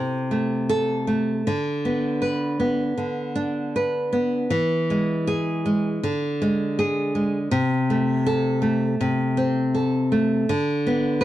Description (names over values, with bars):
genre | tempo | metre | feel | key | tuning
romantic piece for solo classical guitar | 80 BPM | 4/4 | rubato | A minor | A4 = 437 Hz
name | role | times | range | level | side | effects
nylon-string guitar | solo | 0.0-11.2 s | C3 to B4 | -20 LUFS | equal | none
room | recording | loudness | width
light reverb | dark, warm production | -20 LUFS | side -14 dB against mid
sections
0.0-11.2 A section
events
none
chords
0.0 Am/C; 1.4 Bm/D; 4.5 E; 6.0 N.C.; 7.5 Am/C; 10.5 Bm/D